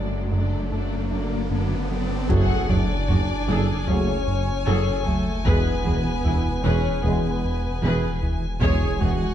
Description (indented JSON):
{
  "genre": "cinematic, hybrid orchestral and electronic film score",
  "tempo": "76 BPM",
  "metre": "4/4",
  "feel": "straight",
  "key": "F# minor",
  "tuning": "A4 = 440 Hz",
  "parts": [
    { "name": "rich studio violin section", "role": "second line", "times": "0.0-9.3 s", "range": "A4 to G#5", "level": "-32 LUFS", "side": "left 6 dB", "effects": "none" },
    { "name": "rich symphonic viola section", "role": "accompaniment", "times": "0.0-9.1 s", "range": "F#3 to C#5", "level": "-32 LUFS", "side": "left 1 dB", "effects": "low-pass filter" },
    { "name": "dark French horn section", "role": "sustained chords", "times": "0.0-8.9 s", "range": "A3 to G#4", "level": "-34 LUFS", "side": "left 4 dB", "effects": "low-pass filter" },
    { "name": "tight sequenced synth", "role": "arpeggios", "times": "0.0-9.2 s", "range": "C#3 to F#4", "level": "-34 LUFS", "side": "left 2 dB", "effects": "none" },
    { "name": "round analog bass", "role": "riff", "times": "0.0-9.3 s", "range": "E2 to F#3", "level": "-28 LUFS", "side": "right 2 dB", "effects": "low-pass filter" },
    { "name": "dark detuned saw bass", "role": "bass", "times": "0.0-9.3 s", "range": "E1 to F#1", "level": "-29 LUFS", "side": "equal", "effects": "none" },
    { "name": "rich symphonic cello section", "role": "bass", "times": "0.0-9.1 s", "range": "E2 to F#2", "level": "-30 LUFS", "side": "right 2 dB", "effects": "none" },
    { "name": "riser and impact", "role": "sound effects", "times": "0.0-5.5 s", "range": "none", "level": "-31 LUFS", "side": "left 1 dB", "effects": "none" },
    { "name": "clear duduk", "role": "melody", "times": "2.3-9.3 s", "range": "A3 to G#4", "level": "-32 LUFS", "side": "right 3 dB", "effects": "low-pass filter" },
    { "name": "rich chamber violin section", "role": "melody", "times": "2.3-9.3 s", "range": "G#5", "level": "-34 LUFS", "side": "left 3 dB", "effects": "low-pass filter" },
    { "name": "warm trombone section", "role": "sustained chords", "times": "2.3-8.9 s", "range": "C#3 to G#3", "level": "-35 LUFS", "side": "right 4 dB", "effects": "low-pass filter" },
    { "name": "mellow tuba", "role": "bass", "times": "2.3-9.2 s", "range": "E1 to F#1", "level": "-31 LUFS", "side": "right 3 dB", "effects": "none" },
    { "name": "rich symphonic double bass section", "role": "bass", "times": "2.3-9.1 s", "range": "E1 to F#1", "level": "-29 LUFS", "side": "right 2 dB", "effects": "none" },
    { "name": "solo taiko drums", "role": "drums", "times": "2.3-9.3 s", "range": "none", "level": "-27 LUFS", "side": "left 1 dB", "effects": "none" }
  ],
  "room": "moderate scoring stage reverb, RT60 2.0 s",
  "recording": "dark, warm production",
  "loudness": "-20 LUFS",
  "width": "side -10 dB against mid",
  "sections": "0.0-2.3 A section; 2.3-9.3 B section",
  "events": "riser 0.0-2.3; filter sweep 0.0-2.3; impact 2.3-5.5",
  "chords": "0.0 D/F#; 2.3 F#madd9; 5.5 E; 8.6 C#m/E",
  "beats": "0.72 1.50 | 2.29 3.08 3.87 4.66 | 5.45 6.24 7.03 7.82 | 8.61"
}